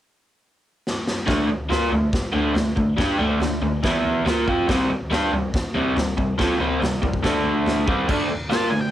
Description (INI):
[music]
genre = garage rock duo or trio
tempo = 141 BPM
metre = 4/4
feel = straight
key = D minor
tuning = A4 = 440 Hz
[part]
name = raw garage drum kit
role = drums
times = 0.9-8.6 s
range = crash cymbal, hi-hat, kick drum, snare drum, toms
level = -24 LUFS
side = equal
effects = cassette tape
[part]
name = crunchy overdriven guitar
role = riff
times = 1.3-8.9 s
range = C3 to Bb4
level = -20 LUFS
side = equal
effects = cassette tape
[part]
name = octave-fuzz lead guitar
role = melody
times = 8.5-8.9 s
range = G5 to A5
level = -26 LUFS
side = equal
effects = distortion, cassette tape
[sound]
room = light reverb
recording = home recording on cassette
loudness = -19 LUFS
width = side -12 dB against mid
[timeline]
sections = 0.0-1.3 A section; 1.3-8.1 B section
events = drum fill 0.8-1.3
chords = 0.0 N.C.; 1.3 D5; 3.8 E5; 4.3 Fsus4; 4.7 C5; 7.2 D5; 7.9 C5; 8.1 Dm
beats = 0.00 0.42 0.85 | 1.28 1.70 2.13 2.55 | 2.98 3.41 3.83 4.26 | 4.68 5.11 5.53 5.96 | 6.38 6.81 7.23 7.65 | 8.08 8.50